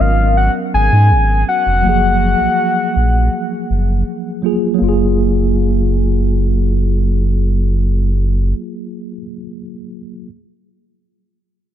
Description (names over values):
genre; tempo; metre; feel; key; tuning
contemporary R&B; 81 BPM; 4/4; straight; F# major; A4 = 439 Hz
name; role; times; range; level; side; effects
soft octave-layered synth lead; melody; 0.0-4.0 s; E#5 to G#5; -16 LUFS; left 2 dB; chorus, tape echo
mellow tine electric piano; accompaniment; 0.0-10.3 s; E#3 to A#4; -19 LUFS; right 1 dB; medium stereo tremolo
sub bass with octave; bass; 0.0-8.5 s; E#1 to G#2; -14 LUFS; equal; none
room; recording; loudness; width
little or no reverb; none; -12 LUFS; side -10 dB against mid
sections
0.0-4.8 A section; 4.8-7.8 B section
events
none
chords
0.0 G#m11; 1.8 F#maj9